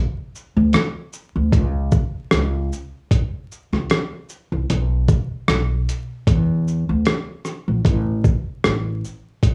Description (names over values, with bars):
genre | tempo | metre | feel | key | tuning
lo-fi hip hop | 76 BPM | 4/4 | swing 55% on 16ths | unclear | A4 = 438 Hz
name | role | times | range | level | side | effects
dusty soul sampler-style drum kit | drums | 0.4-9.5 s | hi-hat, kick drum, rim click, shaker | -21 LUFS | equal | overdrive
upright bass | bass | 0.6-9.0 s | A1 to E2 | -22 LUFS | equal | none
room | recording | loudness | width
light reverb | vinyl crackle, small room reverb | -21 LUFS | mono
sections
0.0-9.5 A section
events
none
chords
none